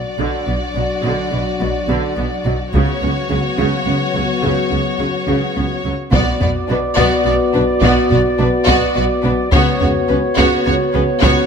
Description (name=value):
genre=cinematic, epic orchestral film score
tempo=106 BPM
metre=3/4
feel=straight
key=B minor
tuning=A4 = 440 Hz
part: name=warm symphonic violin section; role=melody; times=0.0-11.5 s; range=B4 to D5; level=-22 LUFS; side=left 2 dB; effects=none
part: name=warm symphonic violin section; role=second line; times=0.0-11.5 s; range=C#4 to F#4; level=-23 LUFS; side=left 1 dB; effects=none
part: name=dark French horn section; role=sustained chords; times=0.0-11.5 s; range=F#3 to F#4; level=-21 LUFS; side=left 4 dB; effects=none
part: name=warm studio viola section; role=accompaniment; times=0.2-11.5 s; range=C#3 to B3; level=-23 LUFS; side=right 1 dB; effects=none
part: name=rich symphonic double bass section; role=bass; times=0.2-11.3 s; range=B1 to C#2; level=-22 LUFS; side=right 3 dB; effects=none
part: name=warm studio cello section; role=bass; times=0.2-11.3 s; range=B2 to C#3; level=-22 LUFS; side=right 2 dB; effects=none
part: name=taiko ensemble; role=drums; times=2.7-11.5 s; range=none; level=-18 LUFS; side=equal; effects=none
part: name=warm trumpet section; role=stabs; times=6.1-11.5 s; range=C#5 to D5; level=-22 LUFS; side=right 3 dB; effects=none
room=moderate scoring stage reverb, RT60 1.9 s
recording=close, detailed microphones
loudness=-14 LUFS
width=side -6 dB against mid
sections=0.0-6.1 A section; 6.1-11.5 B section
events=none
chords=0.0 Bm; 2.7 F#sus4/C#; 6.1 Bm; 9.5 F#sus4/C#